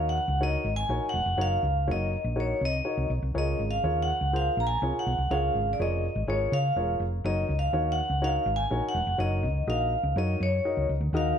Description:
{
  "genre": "uptempo 1960s-style soul",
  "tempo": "123 BPM",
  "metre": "4/4",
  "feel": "straight",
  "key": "unclear",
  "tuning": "A4 = 440 Hz",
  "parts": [
    { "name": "vibraphone with hard mallets", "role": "melody", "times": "0.0-11.4 s", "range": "Db5 to Bb5", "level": "-28 LUFS", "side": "equal", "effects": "none" },
    { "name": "dark upright piano", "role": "accompaniment", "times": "0.0-11.4 s", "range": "Db3 to Eb5", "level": "-33 LUFS", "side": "left 1 dB", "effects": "none" },
    { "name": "hollow-body short-scale fingered electric bass", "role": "bass", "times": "0.0-11.3 s", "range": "Fb1 to Db3", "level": "-28 LUFS", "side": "equal", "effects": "none" }
  ],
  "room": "light reverb",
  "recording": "dark, warm production",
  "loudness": "-25 LUFS",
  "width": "side -8 dB against mid",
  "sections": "0.0-11.1 A section",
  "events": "none",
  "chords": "0.0 Gb6; 3.4 Db6; 7.3 Gb6"
}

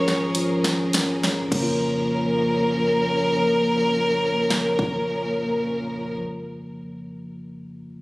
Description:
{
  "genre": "pop ballad",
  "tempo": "50 BPM",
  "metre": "4/4",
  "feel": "straight",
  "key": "Bb minor",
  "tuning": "A4 = 441 Hz",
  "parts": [
    { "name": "warm violin", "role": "melody", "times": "0.0-6.2 s", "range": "Bb4 to Db5", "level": "-24 LUFS", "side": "equal", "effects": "none" },
    { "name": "bell-like tine electric piano", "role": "accompaniment", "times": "0.0-8.0 s", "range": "Bb1 to F4", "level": "-27 LUFS", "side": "equal", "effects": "lush chorus" },
    { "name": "warm studio string section", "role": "sustained chords", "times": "0.0-6.1 s", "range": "Bb2 to Bb4", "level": "-26 LUFS", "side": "equal", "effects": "none" },
    { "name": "warm sub bass", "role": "bass", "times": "0.0-6.2 s", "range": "Ab1 to Bb1", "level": "-36 LUFS", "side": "equal", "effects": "none" },
    { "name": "house drum kit", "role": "drums", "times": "0.1-5.1 s", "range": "crash cymbal, hi-hat, kick drum, snare drum", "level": "-25 LUFS", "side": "equal", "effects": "none" }
  ],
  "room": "light reverb",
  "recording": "recorded on a phone in the room, studio reverb, compression",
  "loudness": "-20 LUFS",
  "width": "side -22 dB against mid",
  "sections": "0.0-1.5 A section; 1.5-6.3 B section",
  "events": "drum fill 0.0-1.5; slowing down 0.0-1.5",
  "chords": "0.0 Bbm7; 1.5 Bbm"
}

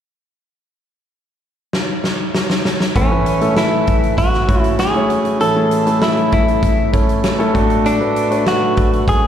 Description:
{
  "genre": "piano-driven pop",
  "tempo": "98 BPM",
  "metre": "4/4",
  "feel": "straight",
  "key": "A major",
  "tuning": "A4 = 440 Hz",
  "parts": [
    { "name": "huge arena drum kit", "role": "drums", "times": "1.7-9.2 s", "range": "hi-hat, kick drum, snare drum", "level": "-17 LUFS", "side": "equal", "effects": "none" },
    { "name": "direct-recorded clean electric guitar", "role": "melody", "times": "3.0-9.3 s", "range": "C#4 to A4", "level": "-18 LUFS", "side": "equal", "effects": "slapback echo" },
    { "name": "clear concert grand piano", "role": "accompaniment", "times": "3.0-9.3 s", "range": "A2 to C#5", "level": "-17 LUFS", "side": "equal", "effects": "slapback echo" }
  ],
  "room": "light reverb",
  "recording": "live gig heard through the venue's PA, recital hall reverb",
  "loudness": "-13 LUFS",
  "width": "side -9 dB against mid",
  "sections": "0.5-3.0 A section; 3.0-9.3 B section",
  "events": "drum fill 1.7-3.0",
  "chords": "0.5 N.C.; 3.0 A; 7.5 D"
}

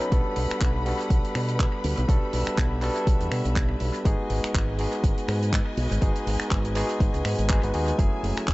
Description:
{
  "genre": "nu-disco, nu disco",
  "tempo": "122 BPM",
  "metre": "4/4",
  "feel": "swing 56% on 16ths",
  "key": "unclear",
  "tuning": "A4 = 439 Hz",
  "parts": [
    { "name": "barky tine electric piano", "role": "accompaniment", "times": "0.0-8.5 s", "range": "F#3 to B4", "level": "-29 LUFS", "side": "equal", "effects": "overdrive, sidechain pumping, tape echo" },
    { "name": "clear studio string section", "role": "sustained chords", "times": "0.0-8.5 s", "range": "G3 to B5", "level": "-35 LUFS", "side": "left 2 dB", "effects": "sidechain pumping" },
    { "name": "damped 70s drum kit", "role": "drums", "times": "0.0-8.5 s", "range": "finger snaps, handclaps, hi-hat", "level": "-34 LUFS", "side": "right 1 dB", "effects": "tape echo" },
    { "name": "fingered electric bass with an envelope filter", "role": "bass", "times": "0.1-8.5 s", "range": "F#1 to B2", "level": "-27 LUFS", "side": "equal", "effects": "sidechain pumping" },
    { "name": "electronic kick drum", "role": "drums", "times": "0.1-8.5 s", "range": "none", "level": "-23 LUFS", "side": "equal", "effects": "none" }
  ],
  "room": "light reverb, studio reverb",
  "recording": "echo-heavy mix, nothing above 8.0 kHz",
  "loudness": "-22 LUFS",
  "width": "side -20 dB against mid",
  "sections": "0.0-8.5 A section",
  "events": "none",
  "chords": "0.1 Gmaj9/B; 4.1 G#m7; 8.0 F#m9"
}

